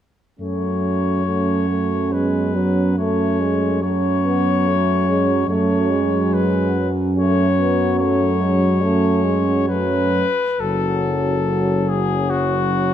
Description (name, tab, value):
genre	classical, hymn-like piece for brass band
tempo	71 BPM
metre	3/4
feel	uneven beats, rubato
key	F# minor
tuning	A4 = 440 Hz
part	clear cornet	melody	0.4-12.9 s	F#4 to C#5	-23 LUFS	left 7 dB	none
part	mellow French horn section	second line	0.4-12.9 s	C#4 to F#4	-23 LUFS	right 6 dB	none
part	mellow trombone section	accompaniment	0.4-12.9 s	F#3 to C#4	-26 LUFS	left 4 dB	none
part	warm euphonium	accompaniment	0.4-12.9 s	F#3 to A3	-23 LUFS	right 2 dB	none
part	mellow tuba	bass	0.4-12.9 s	F#1 to F#2	-22 LUFS	equal	none
room	moderate recital hall reverb, RT60 1.7 s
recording	none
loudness	-16 LUFS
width	side -10 dB against mid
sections	0.4-10.6 A section; 10.6-12.9 B section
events	none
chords	0.4 F#m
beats	| 0.40 1.26 2.12 | 2.98 3.83 4.65 | 5.48 6.32 7.17 | 7.99 8.82 9.69 | 10.59 11.45 12.30